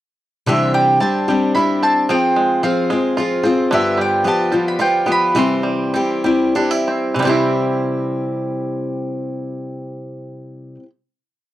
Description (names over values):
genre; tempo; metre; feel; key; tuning
acoustic folk duo or small band; 91-112 BPM; 3/4; straight; C major; A4 = 442 Hz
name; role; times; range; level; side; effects
mandolin; melody; 0.5-6.5 s; E5 to C6; -18 LUFS; right 1 dB; none
picked steel-string acoustic guitar; accompaniment; 0.5-10.9 s; G2 to Ab4; -18 LUFS; left 2 dB; none
bluegrass banjo; arpeggios; 0.5-10.9 s; D3 to F4; -22 LUFS; right 4 dB; none
room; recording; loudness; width
little or no reverb; dry, close 1970s-style studio recording; -15 LUFS; side -14 dB against mid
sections
0.5-7.2 A section; 7.2-11.1 final chord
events
slowing down 3.7-7.2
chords
0.5 Cadd9; 2.1 Fm; 3.7 G7; 5.4 C